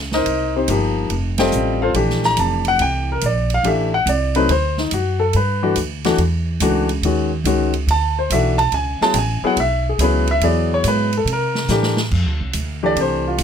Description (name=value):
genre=jazz piano trio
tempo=142 BPM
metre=4/4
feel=swing 67% on 8ths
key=unclear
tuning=A4 = 444 Hz
part: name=upright bass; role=bass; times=0.0-13.4 s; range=F1 to C3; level=-20 LUFS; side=right 1 dB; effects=none
part: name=warm baby grand piano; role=melody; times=0.1-13.4 s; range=D#3 to Bb5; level=-18 LUFS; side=left 2 dB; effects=none
part: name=swinging big-band drum kit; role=drums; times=0.1-13.4 s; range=crash cymbal, hi-hat, kick drum, ride cymbal, snare drum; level=-27 LUFS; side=right 4 dB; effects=none
room=little or no reverb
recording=close, detailed microphones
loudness=-16 LUFS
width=side -8 dB against mid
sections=0.0-12.1 A section; 12.1-13.4 B section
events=band accent 1.3; drum fill 11.7-12.1; grand piano solo 12.1-13.4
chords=0.3 Cm7; 1.1 F9; 2.0 Bb69; 3.6 Am7; 4.5 D; 5.3 G69; 7.0 D#m7; 7.9 D69; 8.7 C#m7; 10.4 E; 11.3 C13; 12.1 F69